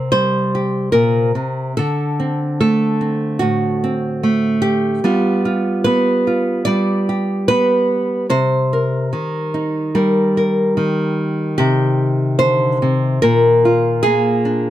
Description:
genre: folk, solo fingerstyle acoustic guitar.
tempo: 73 BPM.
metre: 4/4.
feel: straight.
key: C minor.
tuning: A4 = 440 Hz.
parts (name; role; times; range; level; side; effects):
nylon-string guitar; solo; 0.0-14.7 s; A2 to D5; -14 LUFS; equal; none.
room: light reverb.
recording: close, detailed microphones.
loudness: -14 LUFS.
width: side -13 dB against mid.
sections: 0.0-11.6 A section; 11.6-14.7 B section.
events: none.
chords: 0.0 C5; 1.8 D7; 5.0 G7; 8.3 Cm7; 11.6 Cm; 13.2 Bb.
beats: 0.12 0.94 | 1.76 2.58 3.40 4.21 | 5.03 5.84 6.66 7.47 | 8.29 9.11 9.93 10.75 | 11.58 12.40 13.22 14.03.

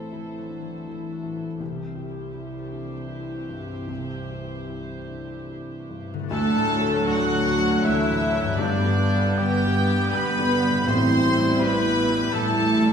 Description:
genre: cinematic, emotional film score for orchestra.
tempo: 73-83 BPM.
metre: 3/4.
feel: rubato.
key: unclear.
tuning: A4 = 439 Hz.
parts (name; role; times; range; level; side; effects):
warm studio violin section; melody; 0.0-12.9 s; D5 to C6; -30 LUFS; left 2 dB; none.
rich studio violin section; second line; 0.0-12.9 s; D4 to C5; -32 LUFS; left 1 dB; none.
felt-muted upright piano; accompaniment; 0.0-12.9 s; A1 to A4; -29 LUFS; left 2 dB; none.
warm studio viola section; accompaniment; 0.0-12.9 s; F#3 to A4; -32 LUFS; right 2 dB; none.
mellow French horn section; sustained chords; 0.0-12.9 s; E3 to E4; -31 LUFS; left 2 dB; none.
concert harp; arpeggios; 0.0-12.9 s; G2 to G4; -34 LUFS; left 6 dB; none.
dark studio cello section; bass; 0.0-12.9 s; A2 to C4; -29 LUFS; right 3 dB; none.
dark studio double bass section; bass; 0.0-12.9 s; G1 to D2; -31 LUFS; right 3 dB; none.
mellow concert flute; second line; 6.3-12.8 s; F#6 to G6; -30 LUFS; equal; none.
mellow cor anglais; second line; 6.3-12.8 s; D4 to C5; -32 LUFS; right 3 dB; none.
warm clarinet; second line; 6.3-12.8 s; B3 to E4; -32 LUFS; left 1 dB; none.
timpani; percussion; 10.9-11.9 s; A2; -31 LUFS; equal; none.
room: wet recital hall reverb, RT60 1.2 s.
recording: minimal, uncompressed stereo recording.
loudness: -20 LUFS.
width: side -7 dB against mid.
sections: 0.0-6.3 A section; 6.3-12.9 B section.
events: none.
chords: 0.0 Am; 1.6 C; 6.3 D; 8.6 G; 10.9 Am7.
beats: 0.13 0.88 | 1.60 2.33 3.10 | 3.89 4.71 5.52 | 6.32 7.09 7.85 | 8.60 9.39 10.14 | 10.88 11.61 12.34.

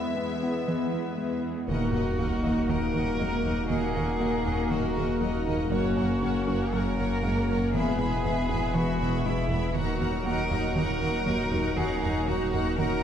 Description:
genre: cinematic, hybrid orchestral and electronic film score.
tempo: 119 BPM.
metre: 4/4.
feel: straight.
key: Eb phrygian.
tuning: A4 = 443 Hz.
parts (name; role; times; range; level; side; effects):
rich symphonic violin section; melody; 0.0-1.4 s; E5; -38 LUFS; left 5 dB; none.
warm symphonic viola section; accompaniment; 0.0-13.0 s; Bb3 to Bb4; -34 LUFS; equal; none.
hollow soft pad; sustained chords; 0.0-13.0 s; Gb3 to B4; -31 LUFS; left 1 dB; chorus.
mallet-like synth pluck; arpeggios; 0.0-12.9 s; Eb3 to Db4; -35 LUFS; right 1 dB; none.
rich symphonic cello section; bass; 0.0-12.9 s; Eb2 to Gb2; -36 LUFS; right 2 dB; none.
warm cello; melody; 1.7-13.0 s; Eb4 to Bb4; -34 LUFS; right 2 dB; ping-pong delay.
rich symphonic violin section; second line; 1.7-13.0 s; Db5 to B5; -36 LUFS; left 3 dB; none.
clear symphonic double bass section; bass; 1.7-12.9 s; E1 to Eb2; -33 LUFS; right 1 dB; none.
wide detuned saw bass; bass; 1.7-13.0 s; Eb1 to Gb1; -33 LUFS; equal; chorus.
sub drop; sound effects; 1.7-3.7 s; none; -33 LUFS; equal; none.
felt-muted upright piano; texture; 2.4-13.0 s; Ab3 to G#5; -39 LUFS; left 3 dB; none.
room: wet scoring stage reverb, RT60 1.5 s.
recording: heard from further back in the room.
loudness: -25 LUFS.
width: side -9 dB against mid.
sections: 0.0-1.7 A section; 1.7-13.0 A section.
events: impact 1.7-3.7.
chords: 0.0 E; 1.7 Ebm; 5.7 Gb; 7.7 E; 9.8 Ebm.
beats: 0.17 0.68 1.18 | 1.69 2.19 2.69 3.20 | 3.70 4.21 4.71 5.22 | 5.72 6.22 6.73 7.23 | 7.74 8.24 8.74 9.25 | 9.75 10.26 10.76 11.27 | 11.77 12.27 12.78.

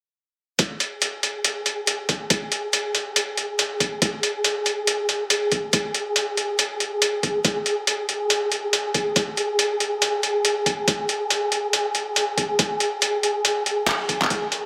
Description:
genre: deep dubstep.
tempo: 140 BPM.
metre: 4/4.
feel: swing 60% on 16ths, half-time.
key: unclear.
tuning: A4 = 440 Hz.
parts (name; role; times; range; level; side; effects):
electronic kick drum; drums; 0.6-14.4 s; none; -30 LUFS; equal; overdrive, high-pass filter on kick, high-pass filter on room.
trip hop sampler-style drum kit; drums; 0.6-14.6 s; handclaps, hi-hat; -24 LUFS; equal; overdrive.
wind-like tuned noise texture; texture; 1.0-14.7 s; Ab4 to Bb4; -27 LUFS; equal; built-in reverb.
room: wet echo chamber reverb, RT60 1.8 s.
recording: none.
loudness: -23 LUFS.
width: mono.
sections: 0.6-14.7 A section.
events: drum fill 13.9-14.3.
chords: none.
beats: | 0.59 1.02 1.45 1.88 | 2.30 2.73 3.16 3.59 | 4.02 4.45 4.88 5.30 | 5.73 6.16 6.59 7.02 | 7.45 7.88 8.30 8.73 | 9.16 9.59 10.02 10.45 | 10.88 11.30 11.73 12.16 | 12.59 13.02 13.45 13.88 | 14.30.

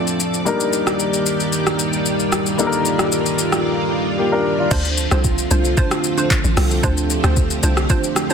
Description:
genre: amapiano.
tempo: 113 BPM.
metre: 4/4.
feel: straight.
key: D phrygian.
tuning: A4 = 440 Hz.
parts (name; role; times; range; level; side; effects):
warm concert grand piano; accompaniment; 0.0-4.8 s; F3 to D5; -21 LUFS; left 4 dB; none.
string machine, full ensemble; sustained chords; 0.0-8.3 s; D3 to D5; -21 LUFS; right 1 dB; ensemble chorus, sidechain pumping.
smooth R&B drum kit; drums; 0.1-8.3 s; crash cymbal, handclaps, hi-hat, kick drum, rim click, shaker; -20 LUFS; left 1 dB; none.
hollow square pluck; stabs; 4.7-8.3 s; D4 to C5; -23 LUFS; right 5 dB; chorus, tape echo.
hollow log drum bass; bass; 4.7-7.9 s; A1 to D2; -18 LUFS; equal; none.
room: light reverb, digital ambience.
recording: dense, heavily limited modern master.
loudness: -16 LUFS.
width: side -6 dB against mid.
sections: 0.0-4.7 A section; 4.7-8.3 B section.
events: drop 4.7-8.3.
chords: 0.5 Ebmaj7; 4.7 Dm7.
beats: | 0.47 1.00 1.53 2.06 | 2.59 3.12 3.65 4.18 | 4.71 5.24 5.78 6.31 | 6.84 7.37 7.90.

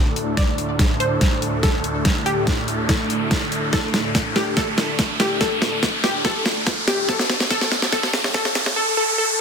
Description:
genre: heavy wobble dubstep.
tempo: 143 BPM.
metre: 4/4.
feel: half-time.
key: unclear.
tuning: A4 = 441 Hz.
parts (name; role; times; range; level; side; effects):
wide unison pluck; melody; 0.0-9.4 s; G4 to D5; -24 LUFS; left 1 dB; cassette tape, digital delay.
supersaw chords; sustained chords; 0.0-8.7 s; D2 to A4; -27 LUFS; right 1 dB; sidechain pumping, low-pass filter.
riser; sound effects; 0.0-9.4 s; none; -24 LUFS; equal; none.
dubstep drum kit; drums; 0.2-8.7 s; hi-hat, snare drum; -22 LUFS; equal; overdrive.
electronic kick drum; drums; 0.4-8.4 s; none; -22 LUFS; equal; overdrive.
room: moderate plate reverb, RT60 1.2 s.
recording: dense, heavily limited modern master, high-pass filter.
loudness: -18 LUFS.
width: side -6 dB against mid.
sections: 0.0-9.4 A section.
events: build-up 0.0-9.4; drum fill 0.0-8.8; riser 0.0-9.4; filter sweep on supersaw synth 0.0-9.4; filter sweep 0.0-9.4.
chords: 0.0 D5.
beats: | 0.37 0.79 1.21 1.63 | 2.05 2.47 2.89 3.31 | 3.73 4.15 4.57 4.99 | 5.41 5.83 6.25 6.67 | 7.09 7.51 7.92 8.35 | 8.76 9.18.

